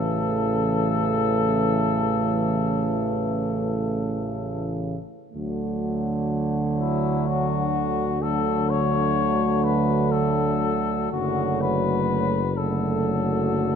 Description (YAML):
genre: classical, hymn-like piece for brass band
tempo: 41 BPM (dotted quarters)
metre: 12/8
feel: rubato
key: D major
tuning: A4 = 441 Hz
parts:
  - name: warm flugelhorn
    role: melody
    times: 0.0-13.8 s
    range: E4 to C#5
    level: -27 LUFS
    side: left 8 dB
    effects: none
  - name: dark French horn section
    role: second line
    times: 0.0-13.8 s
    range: A3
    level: -27 LUFS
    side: right 4 dB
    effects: none
  - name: clear euphonium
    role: accompaniment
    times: 0.0-13.8 s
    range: C#3 to D3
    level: -29 LUFS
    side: right 4 dB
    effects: none
  - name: dark trombone section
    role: accompaniment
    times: 0.0-13.8 s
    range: E3 to F#3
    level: -30 LUFS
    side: left 3 dB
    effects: none
  - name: mellow tuba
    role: bass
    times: 0.0-13.8 s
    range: F#1 to D2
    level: -28 LUFS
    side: equal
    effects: none
room: light reverb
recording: close, detailed microphones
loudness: -21 LUFS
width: side -7 dB against mid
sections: 0.0-13.8 A section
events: none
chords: 0.0 A; 5.3 D; 11.1 D/F#